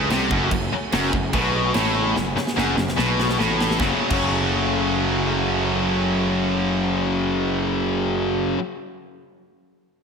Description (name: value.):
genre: heavy metal.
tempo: 146 BPM.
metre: 4/4.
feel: straight.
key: F# minor.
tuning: A4 = 439 Hz.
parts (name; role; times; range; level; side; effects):
warm studio string section; sustained chords; 0.0-7.8 s; C#3 to A4; -34 LUFS; equal; none.
heavy high-gain guitar; riff; 0.0-8.6 s; F#2 to F#3; -24 LUFS; left 9 dB; distortion, slapback echo.
tight distorted guitar; riff; 0.0-8.6 s; F#2 to F#3; -25 LUFS; right 11 dB; distortion.
tight distorted guitar; riff; 0.0-8.6 s; F#2 to F#4; -27 LUFS; right 1 dB; distortion.
fuzz picked electric bass; bass; 0.0-8.5 s; F#1 to B#1; -27 LUFS; equal; overdrive.
tight metal drum kit; drums; 0.1-4.2 s; crash cymbal, kick drum, snare drum; -26 LUFS; equal; none.
room: moderate lush hall reverb, RT60 2.1 s.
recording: big arena sound.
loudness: -19 LUFS.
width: side -6 dB against mid.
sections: 0.0-3.8 A section; 3.8-7.1 B section.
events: drum fill 2.2-3.8.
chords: 0.0 F#m.